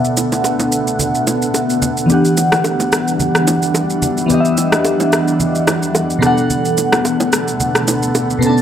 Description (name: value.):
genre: amapiano.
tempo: 109 BPM.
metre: 4/4.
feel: swing 55% on 16ths.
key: E minor.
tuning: A4 = 440 Hz.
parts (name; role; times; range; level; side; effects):
crystalline FM electric piano; accompaniment; 0.0-8.6 s; B2 to A5; -15 LUFS; left 1 dB; chorus, phaser, low-pass filter.
granular cloud pad; sustained chords; 0.0-8.6 s; D3 to F#5; -20 LUFS; right 1 dB; built-in reverb, low-pass filter.
electronic shaker and rim click; drums; 0.0-8.6 s; none; -19 LUFS; right 1 dB; overdrive.
bongos and congas; percussion; 0.2-8.6 s; none; -22 LUFS; right 2 dB; none.
room: light reverb.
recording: none.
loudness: -13 LUFS.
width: side -9 dB against mid.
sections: 0.0-8.6 A section.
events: filter sweep 0.0-8.6.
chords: 0.0 Bm7; 2.1 Em9; 6.2 Bm7.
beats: 0.44 0.99 1.54 | 2.10 2.65 3.20 3.75 | 4.30 4.85 5.40 5.95 | 6.50 7.05 7.60 8.15.